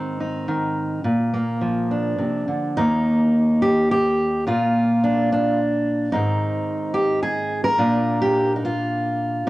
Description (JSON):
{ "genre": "folk, solo fingerstyle acoustic guitar", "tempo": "107 BPM", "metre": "3/4", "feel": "rubato", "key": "Eb major", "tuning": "A4 = 440 Hz", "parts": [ { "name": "fingerpicked steel-string acoustic guitar", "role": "solo", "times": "0.0-9.5 s", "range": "Eb2 to Bb4", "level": "-18 LUFS", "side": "equal", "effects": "cassette tape" } ], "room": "moderate studio reverb, RT60 0.5 s", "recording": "home recording on cassette", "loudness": "-18 LUFS", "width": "side -18 dB against mid", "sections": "0.0-2.8 A section; 2.8-9.5 B section", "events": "none", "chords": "0.0 Ab; 1.0 Bb; 2.8 Eb; 4.5 N.C.; 6.1 Ab; 7.8 Bb" }